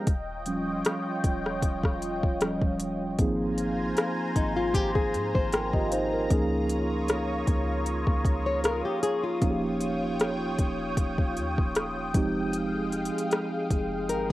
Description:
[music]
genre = contemporary R&B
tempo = 77 BPM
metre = 4/4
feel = swing 54% on 16ths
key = Ab major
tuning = A4 = 440 Hz
[part]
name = mellow tine electric piano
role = accompaniment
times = 0.0-14.3 s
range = F3 to G5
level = -30 LUFS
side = right 1 dB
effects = medium stereo tremolo, cassette tape
[part]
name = lush unison pad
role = sustained chords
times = 0.0-14.3 s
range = Ab3 to Eb6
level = -32 LUFS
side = equal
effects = chorus, phaser, cassette tape
[part]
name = soft 808-style bass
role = bass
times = 0.1-14.3 s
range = Eb1 to Ab2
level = -35 LUFS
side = equal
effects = none
[part]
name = smooth R&B drum kit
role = drums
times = 0.1-14.3 s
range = hi-hat, kick drum, rim click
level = -26 LUFS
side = equal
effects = overdrive, cassette tape
[part]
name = nylon-string guitar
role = arpeggios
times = 4.4-14.3 s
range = Eb4 to Db5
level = -29 LUFS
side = left 3 dB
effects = cassette tape, analog delay
[sound]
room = light reverb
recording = home recording on cassette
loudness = -25 LUFS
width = side -16 dB against mid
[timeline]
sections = 0.1-3.2 A section; 3.2-14.3 B section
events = tine electric piano solo 0.1-3.2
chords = 0.1 Eb9; 3.2 Ab69; 6.3 Db69; 9.4 Eb9; 12.1 Fm9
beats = | 0.07 0.85 1.63 2.41 | 3.19 3.96 4.74 5.52 | 6.30 7.08 7.86 8.64 | 9.42 10.20 10.98 11.76 | 12.54 13.32 14.10

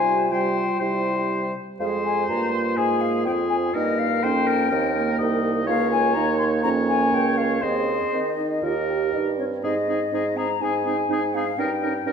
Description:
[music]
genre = quick classical-period movement for wind quintet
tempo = 123 BPM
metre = 4/4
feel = straight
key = Ab major from 5.7 s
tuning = A4 = 437 Hz
[part]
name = silver concert flute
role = melody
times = 0.0-12.1 s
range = Db5 to C6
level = -26 LUFS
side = left 7 dB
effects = none
[part]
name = clear oboe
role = second line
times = 0.0-12.1 s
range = Ab4 to Eb5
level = -28 LUFS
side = left 3 dB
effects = none
[part]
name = warm French horn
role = accompaniment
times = 0.0-12.1 s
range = G3 to G4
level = -28 LUFS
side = right 2 dB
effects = none
[part]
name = warm clarinet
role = accompaniment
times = 0.0-12.1 s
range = Db4 to Ab4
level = -27 LUFS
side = right 5 dB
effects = none
[part]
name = mellow bassoon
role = bass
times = 0.0-12.1 s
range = C2 to Eb3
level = -27 LUFS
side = right 3 dB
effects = none
[sound]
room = wet recital hall reverb, RT60 1.7 s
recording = minimal, uncompressed stereo recording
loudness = -20 LUFS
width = side -6 dB against mid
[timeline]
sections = 0.0-9.6 A section; 9.6-12.1 B section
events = none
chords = 0.0 Csus4; 0.8 C; 1.8 Fm; 3.7 Eb; 5.7 Bbm/Db; 7.6 Ab/Eb; 8.6 Eb; 9.6 Ab; 11.6 Eb7/G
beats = 0.32 0.81 1.30 | 1.80 2.29 2.77 3.26 | 3.75 4.23 4.71 5.19 | 5.67 6.16 6.64 7.13 | 7.63 8.13 8.64 9.14 | 9.64 10.13 10.62 11.10 | 11.59 12.06

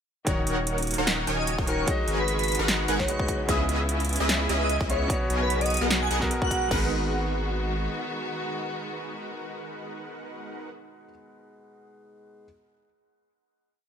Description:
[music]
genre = future bass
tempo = 149 BPM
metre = 4/4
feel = swing 55% on 16ths, half-time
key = G# minor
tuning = A4 = 441 Hz
[part]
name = clear concert grand piano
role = accompaniment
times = 0.2-12.5 s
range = B2 to D#6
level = -33 LUFS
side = left 1 dB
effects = sidechain pumping, dub echo
[part]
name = rich studio string section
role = sustained chords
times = 0.3-10.7 s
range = C#3 to F#4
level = -35 LUFS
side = left 1 dB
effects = sidechain pumping
[part]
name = supersaw stab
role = riff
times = 0.3-10.7 s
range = D#3 to G#5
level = -31 LUFS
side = right 1 dB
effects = wide subtle chorus, sidechain pumping, dub echo
[part]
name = saturated sub bass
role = bass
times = 0.3-7.9 s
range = D#1 to C#2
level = -30 LUFS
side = equal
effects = sidechain pumping
[part]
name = big-room dance drum kit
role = drums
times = 0.3-6.8 s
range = crash cymbal, hi-hat, snare drum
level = -29 LUFS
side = equal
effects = none
[part]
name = electronic kick drum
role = drums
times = 0.3-6.8 s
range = none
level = -28 LUFS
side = equal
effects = none
[part]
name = airy dreamy lead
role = melody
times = 1.4-6.7 s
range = G#4 to G#5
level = -31 LUFS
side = equal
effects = chorus, phaser, sidechain pumping, dub echo
[sound]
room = light reverb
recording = none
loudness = -23 LUFS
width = side -8 dB against mid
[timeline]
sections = 0.3-6.7 drop; 6.7-9.9 final chord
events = drop 0.3-6.7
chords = 0.3 D#m7; 1.9 G#m7; 3.5 C#m9; 5.1 G#m7/B; 6.7 G#m7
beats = | 0.27 0.67 1.07 1.48 | 1.88 2.28 2.68 3.09 | 3.49 3.89 4.29 4.70 | 5.10 5.50 5.91 6.31 | 6.71 7.11 7.51 7.92 | 8.32 8.72 9.13 9.53

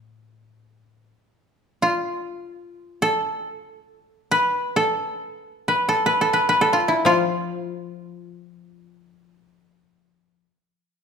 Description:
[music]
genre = japanese traditional, Japanese chamber music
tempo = free time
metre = none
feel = none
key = unclear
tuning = A4 = 439 Hz
[part]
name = koto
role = melody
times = 0.0-9.3 s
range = E4 to B4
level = -19 LUFS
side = equal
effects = none
[part]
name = koto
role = accompaniment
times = 0.0-10.4 s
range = A2 to F3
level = -26 LUFS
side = left 7 dB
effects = none
[sound]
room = moderate recital hall reverb, RT60 1.4 s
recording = minimal, uncompressed stereo recording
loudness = -19 LUFS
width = side -6 dB against mid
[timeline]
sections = 0.0-11.0 A section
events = none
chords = none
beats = free time

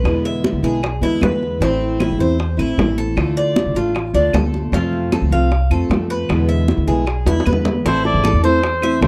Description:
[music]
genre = latin, Cuban son and guajira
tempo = 154 BPM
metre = 4/4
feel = straight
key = A harmonic minor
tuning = A4 = 438 Hz
[part]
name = fingerpicked steel-string acoustic guitar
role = accompaniment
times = 0.0-9.1 s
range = B2 to F4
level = -23 LUFS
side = equal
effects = none
[part]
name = Cuban tres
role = arpeggios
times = 0.0-9.1 s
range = C4 to F5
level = -26 LUFS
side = equal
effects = none
[part]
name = upright bass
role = bass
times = 0.0-9.1 s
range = G#1 to F2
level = -22 LUFS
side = equal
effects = none
[part]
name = bongos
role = percussion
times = 0.1-9.1 s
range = none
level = -26 LUFS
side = equal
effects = none
[part]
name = claves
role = percussion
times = 0.1-9.0 s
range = none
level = -34 LUFS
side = equal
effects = none
[part]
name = congas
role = percussion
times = 0.1-9.1 s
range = none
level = -26 LUFS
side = equal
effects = none
[part]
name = warm trumpet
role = melody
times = 7.9-9.1 s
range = C5 to D5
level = -21 LUFS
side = equal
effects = none
[part]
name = flamenco guitar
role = second line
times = 7.9-9.1 s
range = A4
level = -30 LUFS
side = equal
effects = none
[sound]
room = light reverb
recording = dry, close 1970s-style studio recording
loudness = -17 LUFS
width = mono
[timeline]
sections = 0.0-7.9 A section; 7.9-9.1 B section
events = drum fill 7.3-7.9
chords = 0.0 E7; 1.6 Am; 3.2 Dm; 4.7 F; 6.3 E7; 7.9 Am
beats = | 0.05 0.44 0.83 1.22 | 1.61 2.00 2.39 2.78 | 3.17 3.56 3.95 4.34 | 4.73 5.12 5.51 5.90 | 6.29 6.68 7.07 7.46 | 7.85 8.24 8.63 9.02

